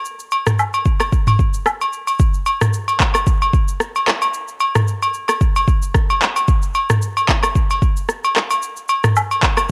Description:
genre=afrobeats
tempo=112 BPM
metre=4/4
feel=swing 55% on 16ths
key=none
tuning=none
part: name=afro-pop drum kit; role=drums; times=0.1-9.7 s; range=handclaps, kick drum, rim click, shaker, toms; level=-18 LUFS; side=equal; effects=cassette tape
part: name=agogo bells and woodblock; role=percussion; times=0.3-9.7 s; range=none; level=-22 LUFS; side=equal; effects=none
room=light reverb, digital ambience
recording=home recording on cassette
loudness=-17 LUFS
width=mono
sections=0.0-2.2 A section; 2.2-9.7 B section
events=none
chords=none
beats=| 0.05 0.59 1.12 1.66 | 2.20 2.73 3.27 3.80 | 4.34 4.88 5.41 5.95 | 6.48 7.02 7.55 8.09 | 8.62 9.16

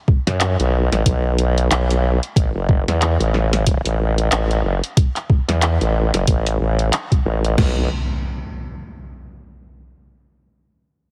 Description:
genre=glitch hop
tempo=92 BPM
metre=4/4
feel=swing 58% on 16ths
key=unclear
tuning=A4 = 440 Hz
part: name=boom bap sampler-style drum kit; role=drums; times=0.1-7.8 s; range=crash cymbal, kick drum, snare drum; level=-18 LUFS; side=equal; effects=overdrive
part: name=formant-sweep wobble bass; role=bass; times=0.3-7.9 s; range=F#1 to F#2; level=-20 LUFS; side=equal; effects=chorus
part: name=drum and bass drum kit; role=drums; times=0.3-7.6 s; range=handclaps, hi-hat, snare drum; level=-25 LUFS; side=equal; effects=none
part: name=impact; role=sound effects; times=7.6-10.2 s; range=none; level=-29 LUFS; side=equal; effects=none
room=digital ambience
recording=heavily compressed radio sound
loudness=-18 LUFS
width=mono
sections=0.0-7.6 A section; 7.6-10.2 B section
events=none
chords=none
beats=0.41 1.06 1.71 | 2.36 3.02 3.67 4.32 | 4.97 5.62 6.28 6.93 | 7.58 8.23 8.88 9.54

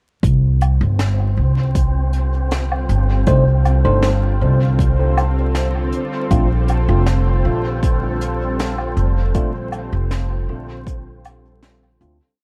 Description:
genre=ambient dub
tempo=79 BPM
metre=4/4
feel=straight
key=unclear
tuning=A4 = 441 Hz
part: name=warm analog pad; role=sustained chords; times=0.2-12.4 s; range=D3 to A4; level=-30 LUFS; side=equal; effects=chorus
part: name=upright bass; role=bass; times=0.2-12.2 s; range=F1 to D2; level=-19 LUFS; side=equal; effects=none
part: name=electronic kick drum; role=drums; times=0.2-11.0 s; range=none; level=-21 LUFS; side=equal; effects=overdrive
part: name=soft brush drum kit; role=drums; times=0.2-12.2 s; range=hi-hat, snare drum, woodblock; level=-29 LUFS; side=equal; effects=dub echo
part: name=wind-like tuned noise texture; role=texture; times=1.0-12.4 s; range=C4 to C5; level=-32 LUFS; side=equal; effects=built-in reverb
part: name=bright tine electric piano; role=stabs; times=3.3-12.2 s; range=A3 to C5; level=-26 LUFS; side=equal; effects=phaser, dub echo
room=light reverb, small room ambience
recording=vinyl crackle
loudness=-18 LUFS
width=mono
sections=0.2-12.4 groove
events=fade-in on analog synth pad 0.2-12.4; fade-out 8.3-12.4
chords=0.2 Csus2; 6.3 Bbmaj7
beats=| 0.24 0.99 1.75 2.51 | 3.27 4.03 4.79 5.55 | 6.31 7.07 7.83 8.59 | 9.35 10.11 10.87 11.63

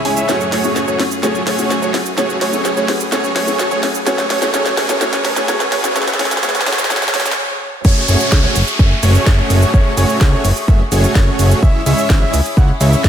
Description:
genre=EDM, festival progressive house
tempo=127 BPM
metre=4/4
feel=straight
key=F# minor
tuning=A4 = 440 Hz
part: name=felt-muted upright piano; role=accompaniment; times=0.0-7.3 s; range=G#3 to G#4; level=-24 LUFS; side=left 4 dB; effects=sidechain pumping, tape echo
part: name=clear studio string section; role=sustained chords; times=0.0-13.1 s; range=C#2 to B4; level=-26 LUFS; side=left 2 dB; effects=sidechain pumping
part: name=dark baby grand piano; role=arpeggios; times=0.0-13.1 s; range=C#5 to G#5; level=-23 LUFS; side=equal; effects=sidechain pumping, tape echo
part: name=riser, noise sweep and downlifter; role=sound effects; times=0.3-11.6 s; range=none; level=-25 LUFS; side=right 1 dB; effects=none
part: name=dense compressed supersaw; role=riff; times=0.1-13.1 s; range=G#3 to G#5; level=-19 LUFS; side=right 1 dB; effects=sidechain pumping, low-pass filter, tape echo
part: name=house drum kit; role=drums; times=0.1-13.1 s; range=crash cymbal, hi-hat, shaker, snare drum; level=-20 LUFS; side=right 1 dB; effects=none
part: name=fat analog bass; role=bass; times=7.8-13.1 s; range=F#1 to C#2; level=-14 LUFS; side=equal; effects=sidechain pumping
part: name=electronic kick drum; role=drums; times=7.8-13.1 s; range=none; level=-12 LUFS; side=equal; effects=none
room=moderate lush hall reverb, RT60 1.9 s, digital ambience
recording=high-pass filter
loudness=-12 LUFS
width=side -9 dB against mid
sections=0.0-7.8 A section; 7.8-13.1 B section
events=build-up 0.0-7.8; drum fill 0.0-7.4; filter sweep on supersaw synth 0.0-7.8; filter sweep 0.0-7.8; noise sweep 6.0-7.8; stop 7.4-7.8; drop 7.8-13.1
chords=0.3 F#madd9; 4.1 Bmadd9; 7.8 F#madd9; 11.6 C#m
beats=| 0.29 0.76 1.23 1.71 | 2.18 2.65 3.12 3.60 | 4.07 4.54 5.01 5.49 | 5.96 6.43 6.90 7.37 | 7.85 8.32 8.79 9.26 | 9.74 10.21 10.68 11.15 | 11.63 12.10 12.57 13.04

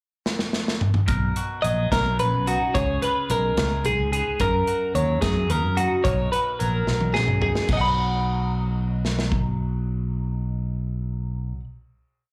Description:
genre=math rock and midwest emo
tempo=73 BPM (dotted quarters)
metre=6/8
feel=straight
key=B lydian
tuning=A4 = 440 Hz
part: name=modern studio drum kit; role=drums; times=0.3-9.4 s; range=crash cymbal, hi-hat, kick drum, snare drum, toms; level=-28 LUFS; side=equal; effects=none
part: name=twangy electric guitar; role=accompaniment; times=1.1-11.6 s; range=F#2 to A#4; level=-34 LUFS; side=equal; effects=phaser, slapback echo
part: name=fingered electric bass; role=bass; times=1.1-11.5 s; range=A#1 to F#2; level=-27 LUFS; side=equal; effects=none
part: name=twelve-string electric guitar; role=arpeggios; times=1.6-11.6 s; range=F#4 to B5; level=-26 LUFS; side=equal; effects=slapback echo
room=light reverb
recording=live gig heard through the venue's PA, club reverb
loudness=-23 LUFS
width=mono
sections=0.0-1.1 pickup bar; 1.1-7.7 A section; 7.7-10.9 final chord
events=drum fill 0.3-1.1, 6.9-7.7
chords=0.0 N.C.; 1.1 Bmaj7; 2.7 C#7; 4.4 F#6; 6.0 Bmaj7; 7.7 B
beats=0.25 | 1.08 1.92 | 2.75 3.57 | 4.40 5.22 | 6.04 6.86 | 7.68 8.50 | 9.31 10.12

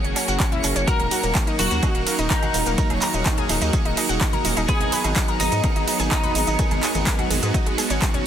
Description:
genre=progressive house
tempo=126 BPM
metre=4/4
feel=straight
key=unclear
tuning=A4 = 442 Hz
part: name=shimmering ambient pad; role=sustained chords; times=0.0-8.3 s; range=D#3 to A#4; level=-31 LUFS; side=right 1 dB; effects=chorus, built-in reverb, phaser, sidechain pumping
part: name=analog pluck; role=arpeggios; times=0.0-8.2 s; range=G#3 to B4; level=-28 LUFS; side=left 2 dB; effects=chorus, vintage 12-bit sampler grit, sidechain pumping, tape echo
part: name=soft supersaw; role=stabs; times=0.0-8.3 s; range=F#3 to C#5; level=-27 LUFS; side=right 4 dB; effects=sidechain pumping, tape echo
part: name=round analog bass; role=bass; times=0.0-8.0 s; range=D#1 to G#2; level=-26 LUFS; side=equal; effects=sidechain pumping
part: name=big-room dance drum kit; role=drums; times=0.0-8.2 s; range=handclaps, hi-hat, ride cymbal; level=-26 LUFS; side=right 2 dB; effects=none
part: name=twinkling granular texture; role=texture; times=0.0-8.3 s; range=C#7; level=-34 LUFS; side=right 2 dB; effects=built-in reverb, sidechain pumping
part: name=shekere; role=percussion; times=0.2-8.1 s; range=none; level=-32 LUFS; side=right 2 dB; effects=none
part: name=woodblock and congas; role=percussion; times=0.2-8.2 s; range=none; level=-35 LUFS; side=right 4 dB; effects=none
part: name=electronic kick drum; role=drums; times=0.4-8.1 s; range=none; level=-22 LUFS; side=equal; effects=none
part: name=semi-hollow electric guitar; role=melody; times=0.9-6.7 s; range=D#4 to A#4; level=-28 LUFS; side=left 1 dB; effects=ensemble chorus, sidechain pumping, tape echo
room=light reverb, digital ambience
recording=dense, heavily limited modern master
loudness=-18 LUFS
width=side -9 dB against mid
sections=0.0-8.3 A section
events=none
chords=0.0 F#; 0.9 D#m; 4.7 G#m7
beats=0.40 | 0.88 1.35 1.83 2.30 | 2.78 3.26 3.73 4.21 | 4.68 5.16 5.64 6.11 | 6.59 7.07 7.54 8.02

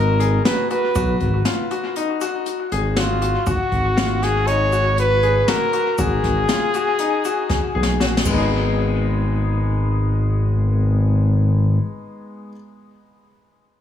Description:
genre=progressive instrumental, band music in an uneven meter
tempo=119 BPM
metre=5/4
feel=straight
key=G# dorian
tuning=A4 = 440 Hz
part: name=warm trumpet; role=melody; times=0.0-8.0 s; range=E#4 to C#5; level=-22 LUFS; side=equal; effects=dub echo
part: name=bright baby grand piano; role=arpeggios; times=0.0-12.5 s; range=G#3 to G#4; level=-25 LUFS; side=left 6 dB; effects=dub echo
part: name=smooth synth bass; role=bass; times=0.0-11.8 s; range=G#1 to B1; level=-19 LUFS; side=equal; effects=none
part: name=jazz brush drum kit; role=drums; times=0.2-8.4 s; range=crash cymbal, hi-hat, kick drum, snare drum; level=-24 LUFS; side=equal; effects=dub echo
part: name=tube shaker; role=percussion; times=1.0-8.7 s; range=none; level=-37 LUFS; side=right 6 dB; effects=none
room=light reverb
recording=echo-heavy mix, small room reverb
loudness=-17 LUFS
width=side -9 dB against mid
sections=0.0-8.5 A section; 8.5-11.0 B section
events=drum fill 7.5-8.5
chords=0.0 G#m7; 3.5 Bsus2/G#; 6.0 G#7(no3); 8.3 G#m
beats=0.45 | 0.96 1.46 1.96 2.47 2.97 | 3.47 3.98 4.48 4.98 5.49 | 5.99 6.49 7.00 7.50 8.00 | 8.50 9.01 9.51 10.01 10.52

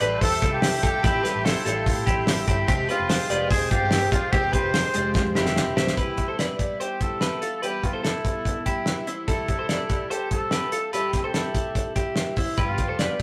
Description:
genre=jangly indie pop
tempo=146 BPM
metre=4/4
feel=straight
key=C major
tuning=A4 = 440 Hz
part: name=warm trumpet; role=melody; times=0.0-13.2 s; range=E4 to C5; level=-31 LUFS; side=equal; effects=digital delay
part: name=picked plugged-in twelve-string acoustic guitar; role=accompaniment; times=0.0-13.2 s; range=F2 to G4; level=-36 LUFS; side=equal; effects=none
part: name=soft string machine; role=sustained chords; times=0.0-5.9, 12.6-13.2 s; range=Ab3 to D6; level=-37 LUFS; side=equal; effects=ensemble chorus
part: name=twelve-string electric guitar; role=arpeggios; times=0.0-13.2 s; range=Ab3 to D5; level=-30 LUFS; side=equal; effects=none
part: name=vintage muted fingered electric bass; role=bass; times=0.0-5.9, 12.6-13.2 s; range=E1 to A2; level=-34 LUFS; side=equal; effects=none
part: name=cloth-damped thuddy drum kit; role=drums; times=0.0-13.2 s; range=hi-hat, kick drum, snare drum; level=-27 LUFS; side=equal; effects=none
part: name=vibraphone with medium hard mallets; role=second line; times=4.9-5.9 s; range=F4 to C5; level=-35 LUFS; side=equal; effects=none
room=wet studio ambience, RT60 0.5 s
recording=rough rehearsal-room recording, tube saturation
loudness=-24 LUFS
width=mono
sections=0.0-6.0 A section; 6.0-13.2 B section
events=drum fill 5.2-6.0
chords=0.0 Am7; 2.7 Fmadd9; 6.0 Cmaj7; 9.3 Am7; 12.6 G7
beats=0.21 0.63 | 1.04 1.45 1.86 2.27 | 2.69 3.10 3.51 3.92 | 4.33 4.74 5.15 5.57 | 5.98 6.39 6.80 7.22 | 7.63 8.04 8.46 8.87 | 9.28 9.69 10.11 10.52 | 10.93 11.35 11.76 12.17 | 12.58 12.99

